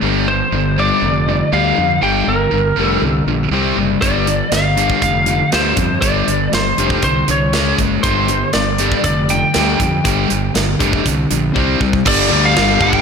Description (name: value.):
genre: hard rock.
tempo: 120 BPM.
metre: 4/4.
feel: straight.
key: unclear.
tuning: A4 = 443 Hz.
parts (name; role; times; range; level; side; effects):
overdriven semi-hollow guitar; riff; 0.0-13.0 s; G2 to C#4; -19 LUFS; left 9 dB; none.
scooped high-gain guitar; riff; 0.0-13.0 s; G2 to C#4; -20 LUFS; right 10 dB; distortion.
fuzz fingered electric bass; bass; 0.0-13.0 s; F1 to F2; -20 LUFS; right 1 dB; overdrive.
lightly driven lead guitar; melody; 0.3-13.0 s; Bb4 to G5; -18 LUFS; equal; digital delay.
tight metal drum kit; drums; 4.0-13.0 s; crash cymbal, hi-hat, kick drum, snare drum; -20 LUFS; right 2 dB; none.
overdriven tonewheel organ; sustained chords; 12.1-13.0 s; G3 to A4; -27 LUFS; right 2 dB; none.
heavy high-gain guitar; riff; 12.1-13.0 s; G2 to G3; -21 LUFS; equal; distortion.
room: moderate scoring stage reverb, RT60 1.5 s, studio ambience.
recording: big arena sound.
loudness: -13 LUFS.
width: side -6 dB against mid.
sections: 0.0-12.1 A section.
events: drum fill 11.6-12.1.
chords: 0.0 Gm; 3.5 C5; 4.0 G5; 7.5 C#5; 8.0 G5; 11.6 C5; 12.1 G5.